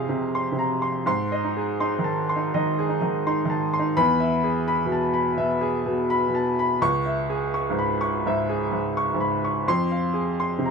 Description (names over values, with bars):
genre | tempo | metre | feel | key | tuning
neoclassical minimalist piano | 84 BPM | 4/4 | rubato | C# minor | A4 = 439 Hz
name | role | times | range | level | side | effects
clear upright piano | solo | 0.0-10.7 s | C#2 to C#6 | -21 LUFS | equal | none
room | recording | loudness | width
moderate stone room reverb, RT60 1.1 s | band playing live in one room | -21 LUFS | side -5 dB against mid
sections
0.0-10.7 A section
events
none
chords
0.0 Fm; 1.1 G#; 4.0 E; 6.8 C#m; 9.7 Fm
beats
0.34 | 1.07 1.80 2.52 3.25 | 3.96 4.68 5.38 6.09 | 6.80 7.52 8.24 8.95 | 9.67 10.39